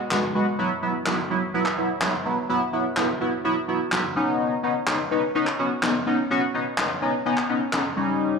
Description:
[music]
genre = dance-pop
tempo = 126 BPM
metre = 4/4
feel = straight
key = unclear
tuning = A4 = 436 Hz
[part]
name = chorused polysynth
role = accompaniment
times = 0.1-8.4 s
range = F#3 to F#4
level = -22 LUFS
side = equal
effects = phaser, slapback echo
[part]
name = handclaps and snare drum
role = drums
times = 0.1-7.8 s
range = none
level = -28 LUFS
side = equal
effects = slapback echo
[sound]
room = moderate plate reverb, RT60 1.9 s, studio reverb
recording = live gig heard through the venue's PA, club reverb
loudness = -21 LUFS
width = side -5 dB against mid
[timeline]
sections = 0.0-8.4 A section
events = none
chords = 0.0 G#m7; 0.6 Esus2; 4.2 Badd9

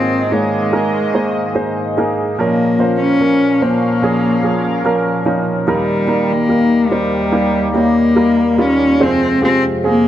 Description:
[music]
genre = pop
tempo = 72 BPM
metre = 4/4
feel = straight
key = unclear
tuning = A4 = 443 Hz
[part]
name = warm cello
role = melody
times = 0.0-10.1 s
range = G3 to Db4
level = -15 LUFS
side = left 1 dB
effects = none
[part]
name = warm concert grand piano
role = accompaniment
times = 0.0-10.1 s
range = Eb2 to Db5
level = -17 LUFS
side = right 2 dB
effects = none
[part]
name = sweeping resonant pad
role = sustained chords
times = 0.0-10.1 s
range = Eb2 to F5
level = -21 LUFS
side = left 1 dB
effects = lush chorus
[sound]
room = light reverb, small room ambience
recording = nothing above 10.5 kHz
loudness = -12 LUFS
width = side -12 dB against mid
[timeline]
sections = 0.0-9.0 A section; 9.0-10.1 B section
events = none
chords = 0.0 Absus2; 2.4 Bbm; 5.7 Eb; 9.0 Fm

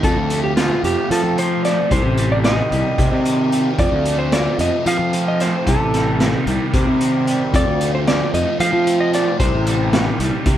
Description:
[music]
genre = psychedelic rock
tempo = 224 BPM (eighths)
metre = 7/8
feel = straight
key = unclear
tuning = A4 = 439 Hz
[part]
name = electric slide guitar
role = melody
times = 0.0-10.0 s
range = F4 to F5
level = -21 LUFS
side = equal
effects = none
[part]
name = fuzz guitar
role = riff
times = 0.0-10.6 s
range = F2 to C4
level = -22 LUFS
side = equal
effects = distortion, phaser
[part]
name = fuzz picked electric bass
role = bass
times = 0.0-10.6 s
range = A1 to F3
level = -19 LUFS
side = equal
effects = overdrive
[part]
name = vintage drum kit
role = drums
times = 0.0-10.6 s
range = hi-hat, kick drum, snare drum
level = -22 LUFS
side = equal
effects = none
[sound]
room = light reverb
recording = band playing live in one room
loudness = -15 LUFS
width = side -11 dB against mid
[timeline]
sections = 0.0-10.6 A section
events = none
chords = 0.0 F; 1.9 Cm; 3.8 F; 5.7 Cm; 7.5 F; 9.4 Cm

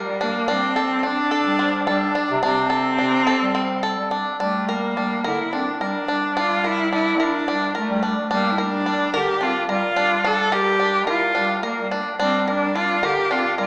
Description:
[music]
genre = contemporary instrumental, chamber music in an uneven meter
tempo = 216 BPM (eighths)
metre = 7/8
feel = straight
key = G dorian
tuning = A4 = 440 Hz
[part]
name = rich cello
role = melody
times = 0.0-13.7 s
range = G3 to A4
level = -21 LUFS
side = equal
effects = none
[part]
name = bluegrass banjo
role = arpeggios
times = 0.0-13.7 s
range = C4 to Bb4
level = -23 LUFS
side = equal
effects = none
[part]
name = mellow bass clarinet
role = bass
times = 0.0-13.7 s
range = C3 to E4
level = -25 LUFS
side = equal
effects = none
[sound]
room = wet concert hall reverb, RT60 2.0 s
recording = recorded in a church or concert hall, small speaker sound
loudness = -18 LUFS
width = side -29 dB against mid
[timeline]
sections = 0.0-4.4 A section; 4.4-13.7 B section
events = none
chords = 0.5 D5; 4.4 Gm7

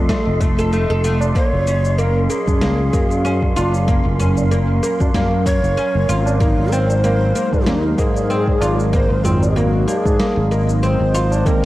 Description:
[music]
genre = organic downtempo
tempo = 95 BPM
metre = 4/4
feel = swing 56% on 16ths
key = unclear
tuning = A4 = 440 Hz
[part]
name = airy breathy pad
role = sustained chords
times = 0.0-11.7 s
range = Bb2 to Eb5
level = -25 LUFS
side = equal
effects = chorus, sidechain pumping
[part]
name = sustaining fretless electric bass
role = bass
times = 0.0-11.4 s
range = F1 to Ab2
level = -18 LUFS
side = equal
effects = wide subtle chorus
[part]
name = wind-like tuned noise texture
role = texture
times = 0.0-11.5 s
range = C6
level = -33 LUFS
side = left 1 dB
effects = built-in reverb
[part]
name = oud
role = arpeggios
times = 0.1-11.6 s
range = A3 to A4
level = -22 LUFS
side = equal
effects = tape echo
[part]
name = electronic kick drum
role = drums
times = 0.1-11.6 s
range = none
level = -19 LUFS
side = equal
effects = overdrive, studio reverb
[part]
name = electronic snare drum and shaker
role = drums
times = 0.1-11.6 s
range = none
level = -26 LUFS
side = left 1 dB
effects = overdrive, studio reverb
[part]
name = tabla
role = percussion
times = 1.2-11.4 s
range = none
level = -27 LUFS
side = right 1 dB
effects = none
[part]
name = breathy low Native American-style wooden flute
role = melody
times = 1.4-11.7 s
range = Eb4 to Db5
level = -22 LUFS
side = equal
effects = ping-pong delay
[part]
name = tine electric piano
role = accompaniment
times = 11.4-11.7 s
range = Eb3 to C4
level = -20 LUFS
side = right 3 dB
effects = medium stereo tremolo, sidechain pumping
[sound]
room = light reverb, digital ambience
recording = worn, warbling old tape, cassette tape, warbly pitch drift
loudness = -14 LUFS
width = side -16 dB against mid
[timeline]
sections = 0.0-11.5 A section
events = kick drops out 10.2-11.5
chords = 0.0 F7; 1.4 Gb; 6.4 Ab7

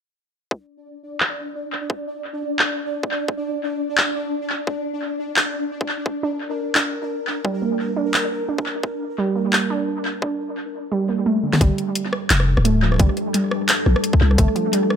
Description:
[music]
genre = half-time drum and bass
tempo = 173 BPM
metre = 4/4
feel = swing 56% on 16ths, half-time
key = G minor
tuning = A4 = 439 Hz
[part]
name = electronic kick drum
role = drums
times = 0.5-14.5 s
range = none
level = -19 LUFS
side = left 1 dB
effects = overdrive, high-pass filter on kick
[part]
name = pulsing gated texture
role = texture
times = 0.9-10.9 s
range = D4 to D5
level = -27 LUFS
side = equal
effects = chorus, built-in reverb
[part]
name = drum and bass drum kit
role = drums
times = 1.2-15.0 s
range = handclaps, hi-hat, rim click, snare drum, toms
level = -21 LUFS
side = equal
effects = overdrive, low-pass filter on snare, low-pass filter on toms, low-pass filter on hats, analog delay
[part]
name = warbly dusty pluck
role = arpeggios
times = 6.2-15.0 s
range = D3 to D4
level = -23 LUFS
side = right 3 dB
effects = chorus, dub echo
[part]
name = deep dark ambient pad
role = sustained chords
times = 12.1-15.0 s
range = G3 to A4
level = -25 LUFS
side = equal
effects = chorus, built-in reverb, sidechain pumping
[part]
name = growling 808-style bass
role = bass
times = 11.6-14.5 s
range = D1 to C2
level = -16 LUFS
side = left 1 dB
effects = none
[sound]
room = light reverb, digital ambience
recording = echo-heavy mix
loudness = -19 LUFS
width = side -8 dB against mid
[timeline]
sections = 0.5-11.6 A section; 11.6-15.0 B section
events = drum fill 11.4; drop 11.6-15.0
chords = 0.5 Gm (rootless); 11.6 G5

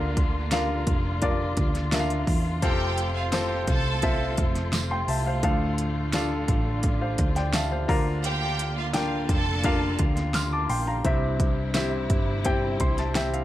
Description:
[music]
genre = piano-driven pop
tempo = 86 BPM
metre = 4/4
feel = straight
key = unclear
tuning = A4 = 440 Hz
[part]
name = warm baby grand piano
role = accompaniment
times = 0.0-13.4 s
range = G2 to F6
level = -28 LUFS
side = left 2 dB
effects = none
[part]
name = warm studio string section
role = sustained chords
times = 0.0-13.4 s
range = C3 to F4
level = -35 LUFS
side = equal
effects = none
[part]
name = hollow-body short-scale picked electric bass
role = bass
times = 0.0-13.4 s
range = F1 to E2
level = -28 LUFS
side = equal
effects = none
[part]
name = pop drum kit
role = drums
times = 0.2-13.4 s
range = hi-hat, kick drum, snare drum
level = -27 LUFS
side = equal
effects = none
[part]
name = tambourine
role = percussion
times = 0.5-13.3 s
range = none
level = -38 LUFS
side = right 9 dB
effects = none
[part]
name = bright studio violin section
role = second line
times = 2.6-10.0 s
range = F4 to A5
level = -31 LUFS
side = right 2 dB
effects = none
[sound]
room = light reverb, small room ambience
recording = dark, warm production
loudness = -23 LUFS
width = side -14 dB against mid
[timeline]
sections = 0.0-13.4 A section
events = grand piano fill 7.2-8.2, 12.5-13.4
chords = 0.0 Bb; 2.6 F; 5.4 Dm; 7.9 Bb; 11.0 C

